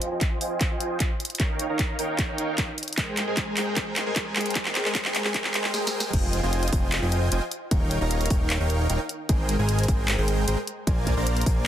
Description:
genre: future bass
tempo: 152 BPM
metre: 4/4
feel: half-time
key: F minor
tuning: A4 = 440 Hz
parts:
  - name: dense compressed supersaw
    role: riff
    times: 0.0-11.7 s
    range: Ab3 to Bb5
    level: -28 LUFS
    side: right 1 dB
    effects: sidechain pumping, low-pass filter, dub echo
  - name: trap drum kit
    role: drums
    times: 0.0-11.5 s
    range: crash cymbal, handclaps, hi-hat, snare drum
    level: -28 LUFS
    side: equal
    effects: none
  - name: electronic kick drum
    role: drums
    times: 0.2-11.5 s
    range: none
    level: -26 LUFS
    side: equal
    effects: none
  - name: fat analog bass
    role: bass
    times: 6.1-11.7 s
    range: Eb1 to Bb1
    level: -25 LUFS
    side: equal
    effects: sidechain pumping
room: light reverb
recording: dense, heavily limited modern master, high-pass filter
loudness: -23 LUFS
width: side -11 dB against mid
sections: 0.0-6.1 A section; 6.1-11.7 B section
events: build-up 0.0-6.1; drum fill 0.0-5.7, 5.7-6.1; filter sweep on supersaw synth 0.0-6.1; filter sweep 0.0-6.1; drop 6.1-11.7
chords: 0.0 Fm7; 1.4 Eb7; 2.8 Abmaj9; 6.1 Fm7; 7.7 Eb7; 9.1 Abmaj9; 10.9 Bb7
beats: 0.21 0.61 1.00 | 1.40 1.79 2.19 2.58 | 2.98 3.37 3.77 4.16 | 4.55 4.95 5.34 5.74 | 6.13 6.53 6.92 7.32 | 7.71 8.11 8.50 8.90 | 9.29 9.69 10.08 10.48 | 10.87 11.27 11.66

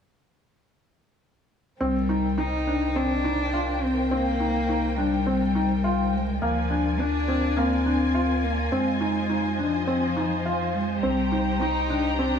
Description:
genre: piano and strings electronica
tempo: 104 BPM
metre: 4/4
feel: straight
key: C minor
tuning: A4 = 440 Hz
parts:
  - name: dark cello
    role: melody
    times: 1.8-12.4 s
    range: F3 to Eb4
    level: -26 LUFS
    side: left 1 dB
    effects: digital delay
  - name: dark studio string section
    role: sustained chords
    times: 1.8-12.4 s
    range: Eb3 to Bb5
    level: -31 LUFS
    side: left 1 dB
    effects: none
  - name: felt-muted upright piano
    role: riff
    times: 1.8-12.3 s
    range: Bb3 to F4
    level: -27 LUFS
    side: left 1 dB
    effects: digital delay
  - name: warm sub bass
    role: bass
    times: 1.8-12.4 s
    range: C2 to F2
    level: -30 LUFS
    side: equal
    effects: none
room: light reverb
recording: none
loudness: -22 LUFS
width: side -7 dB against mid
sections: 1.8-12.4 A section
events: none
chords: 1.8 Cm7; 6.4 Bb7/D; 8.7 Fm7; 11.0 Cm7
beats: | 1.80 2.38 2.96 3.53 | 4.11 4.69 5.26 5.84 | 6.42 6.99 7.57 8.15 | 8.72 9.30 9.88 10.46 | 11.03 11.61 12.19

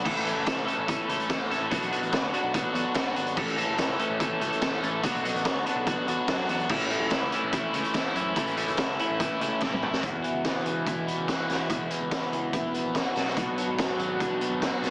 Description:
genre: indie rock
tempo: 144 BPM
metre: 4/4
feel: straight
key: A major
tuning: A4 = 440 Hz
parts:
  - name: dark analog pad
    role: sustained chords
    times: 0.0-14.9 s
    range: F#4 to B5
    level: -38 LUFS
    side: equal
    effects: none
  - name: crunchy overdriven guitar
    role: riff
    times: 0.0-14.9 s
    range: E2 to A4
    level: -29 LUFS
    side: left 1 dB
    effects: phaser
  - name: overdriven semi-hollow guitar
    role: riff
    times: 0.0-14.9 s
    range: E2 to A4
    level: -32 LUFS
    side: right 1 dB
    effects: analog chorus, digital delay
  - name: picked electric bass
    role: bass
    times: 0.1-14.9 s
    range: E1 to F#2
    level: -39 LUFS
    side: equal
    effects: none
  - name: raw garage drum kit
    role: drums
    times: 0.1-14.9 s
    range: crash cymbal, hi-hat, kick drum, snare drum, toms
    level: -29 LUFS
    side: equal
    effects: none
  - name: group handclap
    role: percussion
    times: 0.5-9.7 s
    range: none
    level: -41 LUFS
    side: right 1 dB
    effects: none
room: light reverb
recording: heavily compressed radio sound, small speaker sound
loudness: -25 LUFS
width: side -24 dB against mid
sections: 0.0-10.0 A section; 10.0-14.9 B section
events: drum fill 9.6-10.0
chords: 0.0 Aadd9; 1.7 Bm7; 3.4 Aadd9; 5.0 Bm7; 6.7 Aadd9; 10.0 Esus2; 13.2 Bm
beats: | 0.04 0.46 0.88 1.29 | 1.71 2.12 2.54 2.95 | 3.37 3.79 4.20 4.62 | 5.03 5.45 5.87 6.28 | 6.70 7.11 7.53 7.94 | 8.36 8.77 9.19 9.61 | 10.02 10.44 10.86 11.28 | 11.69 12.11 12.53 12.95 | 13.37 13.78 14.20 14.62

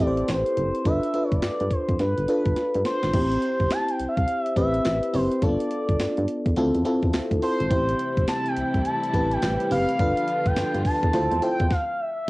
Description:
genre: R&B, new jack swing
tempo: 105 BPM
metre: 4/4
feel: swing 62% on 16ths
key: A minor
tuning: A4 = 439 Hz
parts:
  - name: expressive synth lead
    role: melody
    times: 0.0-12.3 s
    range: B4 to A5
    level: -26 LUFS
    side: equal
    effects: chorus, cassette tape
  - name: FM electric piano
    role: accompaniment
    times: 0.0-11.7 s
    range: A3 to C5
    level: -25 LUFS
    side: left 1 dB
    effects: chorus, cassette tape
  - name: solid FM bass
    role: bass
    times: 0.0-11.7 s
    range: F#1 to G2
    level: -27 LUFS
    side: equal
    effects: none
  - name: clean 12-bit digital drum machine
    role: drums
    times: 0.0-11.9 s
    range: crash cymbal, handclaps, hi-hat, kick drum, snare drum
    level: -26 LUFS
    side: equal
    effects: cassette tape
  - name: warm studio string section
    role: sustained chords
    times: 7.7-11.7 s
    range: D3 to F4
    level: -34 LUFS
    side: equal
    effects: cassette tape
room: wet studio reverb, RT60 0.5 s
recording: home recording on cassette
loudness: -21 LUFS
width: side -21 dB against mid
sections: 0.0-3.1 A section; 3.1-12.3 B section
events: drum fill 2.6-3.1; stop 11.7-12.3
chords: 0.0 Am7; 0.9 G7; 3.1 Am7; 5.4 G7; 6.6 Dm7; 7.7 Am7; 10.0 G7; 11.1 Dm7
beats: 0.28 | 0.85 1.42 2.00 2.57 | 3.14 3.71 4.28 4.85 | 5.42 6.00 6.57 7.14 | 7.71 8.28 8.85 9.42 | 9.99 10.57 11.14 11.71 | 12.28

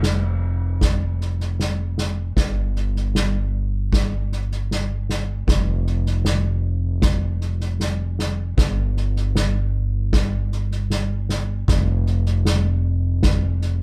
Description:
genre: post-rock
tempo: 77 BPM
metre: 4/4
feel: straight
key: unclear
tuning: A4 = 439 Hz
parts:
  - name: growling fingered electric bass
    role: bass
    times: 0.0-13.8 s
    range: F1 to G1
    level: -23 LUFS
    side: equal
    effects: overdrive
  - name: soft-mallet drum kit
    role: drums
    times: 0.0-13.7 s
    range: kick drum, snare drum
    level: -25 LUFS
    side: equal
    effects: none
room: light reverb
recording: band playing live in one room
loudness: -22 LUFS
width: mono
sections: 0.0-13.8 A section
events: none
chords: none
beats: 0.05 0.82 1.60 | 2.38 3.15 3.93 4.71 | 5.48 6.26 7.03 7.81 | 8.58 9.36 10.13 10.91 | 11.68 12.46 13.24

